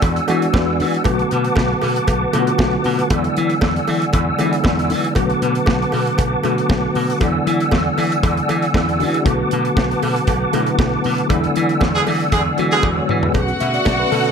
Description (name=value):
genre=disco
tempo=117 BPM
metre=4/4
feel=straight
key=B dorian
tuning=A4 = 440 Hz
part: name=mellow tine electric piano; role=accompaniment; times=0.0-14.3 s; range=D3 to F#5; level=-21 LUFS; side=left 2 dB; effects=medium stereo tremolo
part: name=mellow tonewheel organ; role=sustained chords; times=0.0-14.3 s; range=D3 to E6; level=-21 LUFS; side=equal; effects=chorus vibrato, fast rotary speaker
part: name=slap bass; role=bass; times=0.0-14.3 s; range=B1 to E3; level=-22 LUFS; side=equal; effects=none
part: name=modern studio drum kit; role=drums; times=0.0-14.3 s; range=hi-hat, kick drum, snare drum, toms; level=-22 LUFS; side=equal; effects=none
part: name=cowbell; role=percussion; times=0.0-14.0 s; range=none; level=-28 LUFS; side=right 6 dB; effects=none
part: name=clear horn section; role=stabs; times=11.9-12.9 s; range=D3 to G#4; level=-20 LUFS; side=right 3 dB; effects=none
part: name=rich studio string section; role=second line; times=13.3-14.3 s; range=F#4 to F#5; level=-19 LUFS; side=left 1 dB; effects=none
room=light reverb, studio reverb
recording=none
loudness=-15 LUFS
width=side -6 dB against mid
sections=0.0-13.3 A section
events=tine electric piano fill 0.0-1.1; band accent 11.3-13.3; drum fill 12.8-13.3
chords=0.0 E9; 1.1 Bm7; 3.1 E9; 5.2 Bm7; 7.2 E9; 9.3 Bm7; 11.3 E9; 13.3 Bm9